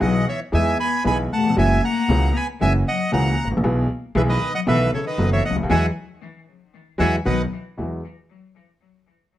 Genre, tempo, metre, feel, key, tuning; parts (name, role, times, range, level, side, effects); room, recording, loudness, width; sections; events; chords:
tango; 116 BPM; 4/4; rubato; E major; A4 = 440 Hz
bandoneon; melody; 0.0-7.4 s; A4 to B5; -23 LUFS; right 2 dB
warm cello; second line; 0.0-7.4 s; C#3 to B3; -26 LUFS; left 6 dB; tape echo
warm upright piano; accompaniment; 0.0-8.0 s; F#1 to G#4; -23 LUFS; equal
upright bass; bass; 0.0-8.0 s; F#1 to E2; -22 LUFS; right 1 dB
light reverb; dark, warm production; -18 LUFS; side -13 dB against mid
0.0-7.8 A section; 7.8-9.4 B section
band accent 5.7-7.8
0.0 Emaj7; 1.6 F#7; 3.6 E/B; 4.7 B7; 5.7 Eadd9; 7.2 B; 7.8 Eadd9